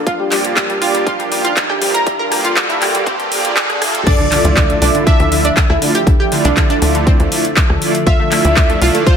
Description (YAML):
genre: progressive house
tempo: 120 BPM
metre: 4/4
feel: straight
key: D minor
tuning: A4 = 441 Hz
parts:
  - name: warm analog pad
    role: sustained chords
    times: 0.0-9.2 s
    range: Bb2 to E5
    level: -23 LUFS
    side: left 2 dB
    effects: chorus, sidechain pumping
  - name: riser, swell and impact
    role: sound effects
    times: 0.2-6.1 s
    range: none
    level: -24 LUFS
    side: equal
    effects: none
  - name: analog pluck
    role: arpeggios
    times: 0.1-9.1 s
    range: D3 to Bb4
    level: -19 LUFS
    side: right 1 dB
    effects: lush chorus, cassette tape, sidechain pumping, digital delay
  - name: big-room dance drum kit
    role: drums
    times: 0.1-9.2 s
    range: crash cymbal, handclaps, hi-hat, rim click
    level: -18 LUFS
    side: equal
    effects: none
  - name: electronic kick drum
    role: drums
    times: 0.1-9.2 s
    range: none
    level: -13 LUFS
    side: equal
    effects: none
  - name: soft supersaw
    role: stabs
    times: 0.3-9.2 s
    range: G2 to E5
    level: -19 LUFS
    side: right 3 dB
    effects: sidechain pumping, digital delay
  - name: plucky unison lead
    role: melody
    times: 4.1-9.2 s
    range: C5 to E5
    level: -18 LUFS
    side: equal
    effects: sidechain pumping, digital delay
  - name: tight sequencer bass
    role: bass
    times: 4.1-8.9 s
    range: C2 to D2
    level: -16 LUFS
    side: equal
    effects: sidechain pumping
room: light reverb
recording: high-pass filter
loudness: -11 LUFS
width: side -7 dB against mid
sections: 0.0-4.1 A section; 4.1-9.2 B section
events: build-up 0.0-4.1; filter sweep on synth pluck 0.0-4.1; riser 0.2-4.1; swell 3.1-4.1; drop 4.1-9.2; impact 4.1-6.1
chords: 0.1 Gm7; 4.1 Dmadd9